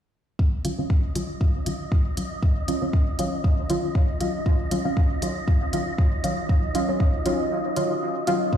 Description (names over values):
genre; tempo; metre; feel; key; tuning
dub techno; 118 BPM; 4/4; swing 55% on 16ths; Eb minor; A4 = 440 Hz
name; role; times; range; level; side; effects
deep dark ambient pad; sustained chords; 2.1-8.6 s; Eb4 to F5; -34 LUFS; right 1 dB; chorus, built-in reverb, sidechain pumping
electronic kick drum; drums; 0.4-8.6 s; none; -21 LUFS; equal; small room ambience
wind-like tuned noise texture; texture; 0.8-8.6 s; Eb5; -34 LUFS; right 1 dB; built-in reverb, sidechain pumping
deep mellow chord stab; stabs; 0.6-8.5 s; Eb3 to F4; -26 LUFS; equal; chorus, phaser, cassette tape, sidechain pumping, dub echo
electronic hi-hat; drums; 0.6-8.4 s; none; -37 LUFS; equal; small room ambience
room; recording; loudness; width
light reverb, digital ambience; played on a big sound system in a bare room, stone room reverb; -21 LUFS; side -9 dB against mid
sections
0.4-8.5 A section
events
filter sweep on synth stab 0.4-8.5; filter sweep on ambient pad 0.4-8.5; break 7.5-8.5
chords
0.4 Ebm9